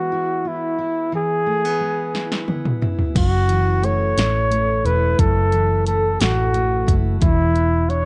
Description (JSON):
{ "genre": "six-eight pop ballad", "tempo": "59 BPM (dotted quarters)", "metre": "6/8", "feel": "straight", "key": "unclear", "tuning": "A4 = 440 Hz", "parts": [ { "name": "warm flugelhorn", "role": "melody", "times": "0.0-8.1 s", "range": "E4 to C#5", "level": "-23 LUFS", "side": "equal", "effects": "digital delay" }, { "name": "fingerpicked steel-string acoustic guitar", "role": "accompaniment", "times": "0.0-8.1 s", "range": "F#2 to E4", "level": "-28 LUFS", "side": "equal", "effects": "none" }, { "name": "deep house drum kit", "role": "drums", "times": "2.1-8.1 s", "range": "crash cymbal, hi-hat, kick drum, snare drum, toms", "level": "-23 LUFS", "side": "equal", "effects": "none" }, { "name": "vintage muted fingered electric bass", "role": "bass", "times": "3.2-8.1 s", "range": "E1 to A1", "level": "-22 LUFS", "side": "equal", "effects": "none" } ], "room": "light reverb", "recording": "worn, warbling old tape, cassette tape, warbly pitch drift, nothing above 10.6 kHz", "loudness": "-19 LUFS", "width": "mono", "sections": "0.0-3.2 A section; 3.2-8.1 B section", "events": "drum fill 2.1-3.2", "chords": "0.0 E; 3.2 F#m7; 7.2 E7(no3)", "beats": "0.11 | 1.12 2.14 | 3.16 4.17 | 5.19 6.21 | 7.22" }